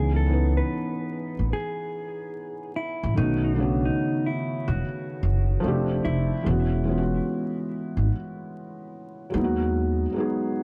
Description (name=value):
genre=hip hop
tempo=73 BPM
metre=4/4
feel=swing 66% on 16ths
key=C# minor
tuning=A4 = 440 Hz
part: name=mellow electric guitar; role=melody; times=0.0-6.5 s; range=D4 to B4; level=-34 LUFS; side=equal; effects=low-pass filter, tape echo
part: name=felt-muted upright piano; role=accompaniment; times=0.0-10.6 s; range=C#3 to B4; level=-30 LUFS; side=equal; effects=low-pass filter
part: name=upright bass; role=bass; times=0.0-10.0 s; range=E1 to D#2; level=-26 LUFS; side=equal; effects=none
room=light reverb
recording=dark, warm production, vinyl crackle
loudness=-26 LUFS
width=mono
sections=0.0-10.6 A section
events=none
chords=0.0 C#m9; 3.2 B9; 5.6 F69; 6.5 E69; 9.3 G#m7/D#